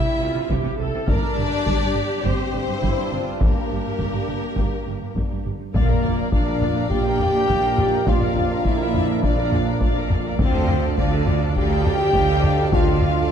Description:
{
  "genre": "cinematic, epic orchestral film score",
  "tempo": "103 BPM",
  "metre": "4/4",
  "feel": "straight",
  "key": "Bb lydian",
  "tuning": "A4 = 439 Hz",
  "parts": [
    { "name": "bright symphonic violin section", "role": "melody", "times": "0.0-13.3 s", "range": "Bb4 to G5", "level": "-33 LUFS", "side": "left 4 dB", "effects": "none" },
    { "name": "warm symphonic violin section", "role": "second line", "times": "0.0-13.3 s", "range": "Bb3 to Bb5", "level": "-32 LUFS", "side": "left 6 dB", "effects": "none" },
    { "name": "rich symphonic viola section", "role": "accompaniment", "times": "0.0-13.3 s", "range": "E4 to F5", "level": "-30 LUFS", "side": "equal", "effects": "none" },
    { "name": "warm French horn section", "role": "sustained chords", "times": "0.0-13.3 s", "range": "Bb3 to G4", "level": "-24 LUFS", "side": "left 2 dB", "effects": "none" },
    { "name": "warm trombone section", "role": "sustained chords", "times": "0.0-13.3 s", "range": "F2 to E4", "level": "-31 LUFS", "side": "right 4 dB", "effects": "none" },
    { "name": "clear symphonic double bass section", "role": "bass", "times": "0.2-13.3 s", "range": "G1 to D2", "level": "-27 LUFS", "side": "right 4 dB", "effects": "none" },
    { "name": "rich symphonic cello section", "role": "bass", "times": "0.2-13.2 s", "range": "G2 to D3", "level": "-27 LUFS", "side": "right 4 dB", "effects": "none" },
    { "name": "taiko ensemble", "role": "drums", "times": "0.5-13.3 s", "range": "none", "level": "-23 LUFS", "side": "left 1 dB", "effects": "none" },
    { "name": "impact", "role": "sound effects", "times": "5.7-8.1 s", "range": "none", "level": "-31 LUFS", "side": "left 1 dB", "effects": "none" }
  ],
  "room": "moderate concert hall reverb, RT60 2.3 s",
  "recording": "dark, warm production",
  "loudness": "-18 LUFS",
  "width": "side -8 dB against mid",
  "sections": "0.0-5.7 A section; 5.7-13.3 B section",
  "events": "impact 5.7-8.1",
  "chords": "0.0 C; 1.1 Gm; 5.7 Bb; 10.4 Dm"
}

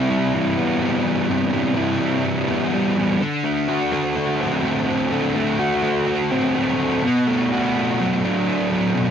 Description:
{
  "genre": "rock",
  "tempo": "125 BPM",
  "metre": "4/4",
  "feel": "straight",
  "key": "unclear",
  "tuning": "A4 = 439 Hz",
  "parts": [
    { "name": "fuzz guitar", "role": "solo", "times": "0.0-9.1 s", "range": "B2 to F#4", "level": "-18 LUFS", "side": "equal", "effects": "distortion, wide subtle chorus, cassette tape" }
  ],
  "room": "wet booth ambience, RT60 0.2 s",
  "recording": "home recording on cassette",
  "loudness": "-18 LUFS",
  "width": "side -8 dB against mid",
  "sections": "0.0-9.1 A section",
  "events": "none",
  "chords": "0.0 Cmaj7; 3.2 D7; 7.0 Bm7"
}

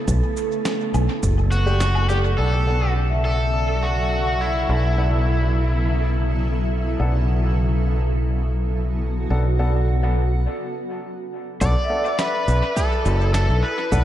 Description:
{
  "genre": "ambient dub",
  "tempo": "104 BPM",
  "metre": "4/4",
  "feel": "straight",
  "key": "B minor",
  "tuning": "A4 = 439 Hz",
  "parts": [
    { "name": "granular cloud pad", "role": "sustained chords", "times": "0.0-14.0 s", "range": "C#3 to A4", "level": "-28 LUFS", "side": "equal", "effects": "built-in reverb" },
    { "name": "concert harp", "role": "arpeggios", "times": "0.0-14.0 s", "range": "F#4 to E5", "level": "-32 LUFS", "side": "left 1 dB", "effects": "low-pass filter, diffuse ambient delay" },
    { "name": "wind-like tuned noise texture", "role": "texture", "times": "0.0-10.5 s", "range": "A4 to E5", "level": "-34 LUFS", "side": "right 6 dB", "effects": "built-in reverb, lush chorus" },
    { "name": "fingered electric bass", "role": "bass", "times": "0.1-14.0 s", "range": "F#1 to B1", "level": "-20 LUFS", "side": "equal", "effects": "none" },
    { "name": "electronic cabasa, snare drum and woodblock", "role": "drums", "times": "0.1-2.2, 11.6-14.0 s", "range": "none", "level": "-31 LUFS", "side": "equal", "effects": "low-pass filter on perc, studio reverb, low-pass filter on snare, dub echo" },
    { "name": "electronic kick drum", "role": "drums", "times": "0.1-1.3, 11.6-14.0 s", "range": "none", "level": "-24 LUFS", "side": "equal", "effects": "studio reverb" },
    { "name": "overdriven slide guitar", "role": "melody", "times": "1.5-6.1, 11.6-14.0 s", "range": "E4 to D5", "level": "-24 LUFS", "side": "equal", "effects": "dub echo" },
    { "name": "warm upright piano", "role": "stabs", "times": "1.7-14.0 s", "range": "A3 to A4", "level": "-30 LUFS", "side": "left 1 dB", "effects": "dub echo" }
  ],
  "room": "moderate plate reverb, RT60 2.6 s",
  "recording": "dreamy mix soaked in reverb",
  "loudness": "-18 LUFS",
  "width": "side -12 dB against mid",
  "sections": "0.0-2.4 A section; 2.4-11.6 B section; 11.6-14.0 C section",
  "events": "break 10.5-11.6",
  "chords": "0.0 Gsus2; 2.4 Bm7"
}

